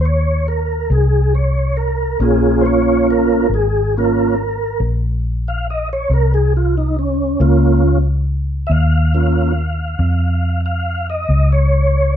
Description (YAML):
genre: blues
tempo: 46 BPM (dotted quarters)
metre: 12/8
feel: straight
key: Bb minor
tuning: A4 = 440 Hz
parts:
  - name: tonewheel organ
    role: sustained chords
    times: 0.0-12.1 s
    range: Bb3 to F5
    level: -17 LUFS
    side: right 1 dB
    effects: slow rotary speaker, chorus vibrato
  - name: vintage muted fingered electric bass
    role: bass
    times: 0.0-12.2 s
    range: Ab1 to F2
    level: -16 LUFS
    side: equal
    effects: none
room: moderate studio reverb, RT60 0.8 s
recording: band playing live in one room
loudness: -14 LUFS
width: side -9 dB against mid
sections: 0.0-12.2 A section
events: tonewheel organ solo 0.0-12.2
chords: 0.0 Eb5; 2.2 Bbm